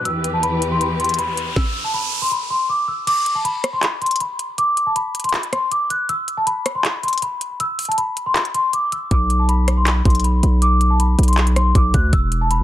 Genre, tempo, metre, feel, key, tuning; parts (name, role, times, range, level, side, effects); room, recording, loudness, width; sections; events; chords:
hip hop, trap; 159 BPM; 4/4; half-time; B phrygian; A4 = 440 Hz
rich symphonic string section; sustained chords; 0.0-1.5 s; E2 to B4; -23 LUFS; left 1 dB; low-pass filter
downlifter and riser; sound effects; 0.7-2.3 s; -27 LUFS; right 3 dB
large celesta; melody; 0.1-12.6 s; A5 to F#6; -20 LUFS; left 1 dB; low-pass filter, tape echo
trap drum kit; drums; 0.1-12.6 s; crash cymbal, handclaps, hi-hat, kick drum, rim click, snare drum; -20 LUFS; equal
distorted 808-style bass; bass; 9.1-12.6 s; E1 to E2; -16 LUFS; equal; distortion
little or no reverb; dense, heavily limited modern master; -16 LUFS; side -13 dB against mid
0.0-3.1 A section; 3.1-12.6 B section
filter sweep 0.0-3.1; riser 0.7-3.1; kick muted 3.1-9.1
0.1 Em; 3.1 N.C.; 9.1 Bm; 12.1 E5